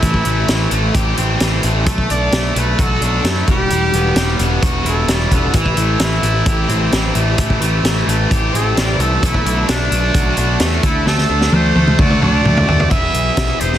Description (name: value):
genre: indie rock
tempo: 130 BPM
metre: 4/4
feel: straight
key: A dorian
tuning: A4 = 436 Hz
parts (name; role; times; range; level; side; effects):
- clear trumpet; melody; 0.0-13.8 s; D4 to E5; -21 LUFS; equal; tape echo
- distorted electric guitar; riff; 0.0-13.8 s; E3 to G#4; -19 LUFS; equal; overdrive
- fuzz picked electric bass; bass; 0.0-13.8 s; E1 to F#2; -18 LUFS; equal; overdrive
- vintage drum kit; drums; 0.0-13.8 s; hi-hat, kick drum, snare drum, toms; -18 LUFS; equal; none
- bright tonewheel organ; sustained chords; 5.6-12.9 s; F#4 to A5; -30 LUFS; left 1 dB; none
room: light reverb, small room ambience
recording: dense, heavily limited modern master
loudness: -13 LUFS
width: side -11 dB against mid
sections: 0.0-12.9 A section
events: trumpet solo 0.0-12.9; drum fill 11.1-12.9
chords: 0.0 Am7; 1.9 Bm7; 3.5 Emadd9; 5.6 Am7; 9.2 Bm7; 10.8 D; 12.9 E